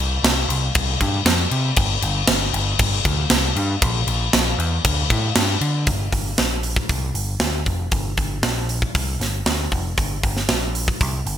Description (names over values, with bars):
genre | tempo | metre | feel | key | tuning
hard rock | 117 BPM | 4/4 | straight | G dorian, G minor from 5.9 s | A4 = 442 Hz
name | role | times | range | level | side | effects
overdriven picked electric bass | bass | 0.0-11.4 s | F1 to D3 | -22 LUFS | equal | none
tight metal drum kit | drums | 0.2-11.4 s | crash cymbal, hi-hat, kick drum, snare drum | -20 LUFS | equal | gated reverb
room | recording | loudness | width
light reverb | bright 1980s-style digital production | -18 LUFS | side -10 dB against mid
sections
0.0-5.9 A section; 5.9-11.4 B section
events
none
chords
none